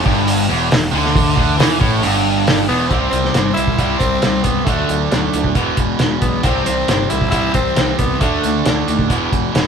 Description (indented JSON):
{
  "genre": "classic rock",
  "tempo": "136 BPM",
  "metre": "4/4",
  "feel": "straight",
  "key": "unclear",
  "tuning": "A4 = 441 Hz",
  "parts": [
    { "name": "biting overdriven guitar", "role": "riff", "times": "0.0-9.7 s", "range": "E2 to D4", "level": "-21 LUFS", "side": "left 6 dB", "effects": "none" },
    { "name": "distorted electric guitar", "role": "riff", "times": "0.0-9.7 s", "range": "E2 to D4", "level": "-19 LUFS", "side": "right 7 dB", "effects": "overdrive" },
    { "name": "fuzz picked electric bass", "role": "bass", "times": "0.0-9.7 s", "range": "E1 to E2", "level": "-23 LUFS", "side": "equal", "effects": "overdrive" },
    { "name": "cloth-damped thuddy drum kit", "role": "drums", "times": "0.1-9.7 s", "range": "hi-hat, kick drum, snare drum", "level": "-18 LUFS", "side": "equal", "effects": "none" },
    { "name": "growling tenor saxophone", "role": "melody", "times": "2.7-8.7 s", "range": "A3 to E4", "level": "-21 LUFS", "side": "left 2 dB", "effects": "none" }
  ],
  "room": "moderate studio ambience, RT60 0.5 s",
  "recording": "band playing live in one room",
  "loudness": "-13 LUFS",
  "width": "side -6 dB against mid",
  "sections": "0.0-2.9 A section; 2.9-9.7 B section",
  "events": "none",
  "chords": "0.0 Em7; 2.9 C; 4.7 D; 5.6 E; 6.4 C; 8.2 D5; 9.1 E"
}